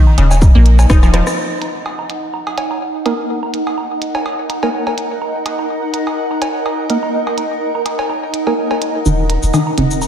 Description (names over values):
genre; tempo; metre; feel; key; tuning
minimal techno; 125 BPM; 4/4; swing 55% on 16ths; Eb minor; A4 = 441 Hz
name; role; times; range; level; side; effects
granular cloud pad; texture; 0.1-10.1 s; Eb4 to Bb5; -21 LUFS; right 1 dB; built-in reverb, lush chorus, sidechain pumping
pulsing gated texture; texture; 0.0-10.1 s; Eb5 to Gb5; -28 LUFS; left 1 dB; chorus, built-in reverb, sidechain pumping
woodblock and cowbell; percussion; 0.1-10.1 s; none; -24 LUFS; right 2 dB; ping-pong delay
resonant blip pluck; riff; 0.2-1.2, 9.1-9.9 s; Db3 to Eb4; -18 LUFS; equal; chorus, sidechain pumping, analog delay
punchy sub bass; bass; 0.2-1.2, 9.1-10.1 s; Eb1 to Bb1; -12 LUFS; equal; sidechain pumping
minimal click drum kit; drums; 0.2-10.1 s; cabasa, hi-hat, rim click; -25 LUFS; equal; low-pass filter on perc, low-pass filter on hats, low-pass filter on snare, low-pass filter on room
electronic kick drum; drums; 0.4-1.0 s; none; -9 LUFS; equal; none
percussive organ stab; stabs; 3.1-8.5 s; Bb3 to Bb4; -22 LUFS; right 1 dB; analog chorus, ping-pong delay
room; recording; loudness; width
moderate church reverb, RT60 2.8 s; dreamy mix soaked in reverb; -14 LUFS; side -9 dB against mid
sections
0.0-1.4 A section; 1.4-9.1 B section; 9.1-10.1 C section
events
drop 0.0-1.4; drum fill 1.0-1.4; band accent 1.3; build-up 9.1-10.1; filter sweep on synth pluck 9.1-10.1; filter sweep 9.1-10.1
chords
0.0 Eb5